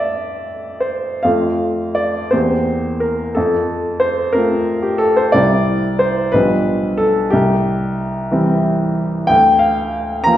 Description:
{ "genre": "classical, romantic character piece for solo piano", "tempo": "44-63 BPM (dotted quarters)", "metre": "6/8", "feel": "rubato", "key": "F major", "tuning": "A4 = 438 Hz", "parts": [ { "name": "clear upright piano", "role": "solo", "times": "0.0-10.4 s", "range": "B1 to Bb5", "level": "-14 LUFS", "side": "equal", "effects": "none" } ], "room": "wet recital hall reverb, RT60 1.3 s", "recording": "recorded in a church or concert hall", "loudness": "-14 LUFS", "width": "side -12 dB against mid", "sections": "0.0-1.2 A section; 1.2-10.4 A section", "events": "none", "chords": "0.0 F; 2.3 C7/E; 3.4 F; 5.3 C; 6.3 G7/B; 7.3 C; 9.3 Bb/D", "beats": "| 1.25 2.32 | 3.36 4.34 | 5.34 6.34 | 7.33 8.32 | 9.29 10.25" }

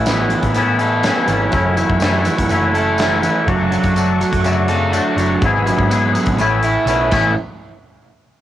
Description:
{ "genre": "indie rock", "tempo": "123 BPM", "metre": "4/4", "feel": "straight", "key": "A major", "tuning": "A4 = 437 Hz", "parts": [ { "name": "bright tonewheel organ", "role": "sustained chords", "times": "0.0-7.4 s", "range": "C#4 to E6", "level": "-29 LUFS", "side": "equal", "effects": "none" }, { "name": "raw garage guitar", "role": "riff", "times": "0.0-7.3 s", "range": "F#2 to A4", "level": "-19 LUFS", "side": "right 4 dB", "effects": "overdrive, wide subtle chorus, cassette tape" }, { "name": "twangy electric guitar", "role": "riff", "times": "0.0-7.3 s", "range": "F#2 to G#4", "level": "-18 LUFS", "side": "left 4 dB", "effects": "lush chorus, cassette tape" }, { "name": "hollow-body short-scale picked electric bass", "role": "bass", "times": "0.0-7.3 s", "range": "F#1 to A2", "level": "-21 LUFS", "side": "equal", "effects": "transformer saturation" }, { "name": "big rock drum kit", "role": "drums", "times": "0.1-7.2 s", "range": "crash cymbal, hi-hat, kick drum, snare drum", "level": "-23 LUFS", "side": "equal", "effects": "none" }, { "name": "tambourine", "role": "percussion", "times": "0.1-7.4 s", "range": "none", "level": "-35 LUFS", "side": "right 6 dB", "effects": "none" } ], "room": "light reverb", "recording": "home recording on cassette", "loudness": "-13 LUFS", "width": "side -12 dB against mid", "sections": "0.0-7.4 A section; 7.4-8.4 B section", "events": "none", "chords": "0.0 Aadd9; 1.5 F#m7; 3.5 Dmaj7/F#; 5.4 Eadd9/G#; 6.4 Aadd9; 7.4 N.C.", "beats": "0.07 0.56 1.04 | 1.53 2.02 2.50 2.99 | 3.48 3.96 4.45 4.94 | 5.42 5.91 6.40 6.88" }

